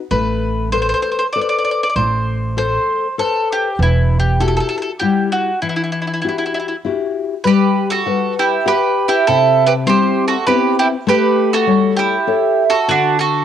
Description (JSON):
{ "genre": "italian folk, Italian serenade", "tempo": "99 BPM", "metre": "3/4", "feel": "straight", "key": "E minor, G major from 7.5 s", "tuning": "A4 = 441 Hz", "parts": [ { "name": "bowl-back mandolin", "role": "melody", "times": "0.1-13.4 s", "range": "E4 to D5", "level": "-18 LUFS", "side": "equal", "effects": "cassette tape" }, { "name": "nylon-string guitar", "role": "accompaniment", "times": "0.1-13.4 s", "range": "C3 to F#5", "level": "-18 LUFS", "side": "left 7 dB", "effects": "none" }, { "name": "upright bass", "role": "bass", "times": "0.1-4.6 s", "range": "E1 to A1", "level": "-17 LUFS", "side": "right 2 dB", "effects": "none" }, { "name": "mandolin", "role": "second line", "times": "7.5-13.4 s", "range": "D4 to G4", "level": "-16 LUFS", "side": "right 9 dB", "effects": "none" } ], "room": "moderate spring reverb, RT60 1.8 s, small room reverb", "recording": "home recording on cassette", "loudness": "-14 LUFS", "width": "side -9 dB against mid", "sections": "0.0-7.5 A section; 7.5-13.4 B section", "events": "break 5.6-7.5", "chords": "0.1 Amadd9; 3.8 Emadd9; 7.5 Gmaj7; 9.3 Cmaj7; 11.1 A7; 12.9 D", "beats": "| 0.11 0.73 1.35 | 1.96 2.57 3.18 | 3.79 4.40 5.01 | 5.62 6.23 6.84 | 7.46 8.07 8.67 | 9.27 9.87 10.47 | 11.06 11.66 12.27 | 12.87" }